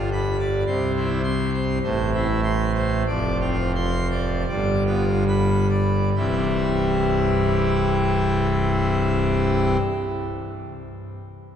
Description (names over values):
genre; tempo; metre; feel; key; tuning
classical, organ toccata; 65-110 BPM; 4/4; straight; C major; A4 = 440 Hz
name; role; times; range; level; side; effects
pipe organ, full organ; solo; 0.0-9.8 s; C1 to C6; -20 LUFS; equal; none
room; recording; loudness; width
wet cathedral reverb, RT60 4.4 s; heard from further back in the room; -19 LUFS; side -8 dB against mid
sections
0.0-6.2 A section; 6.2-9.8 B section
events
slowing down 0.0-6.2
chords
0.0 G7; 0.7 C; 1.8 Am; 3.1 Dm7/F; 4.5 G7; 6.2 C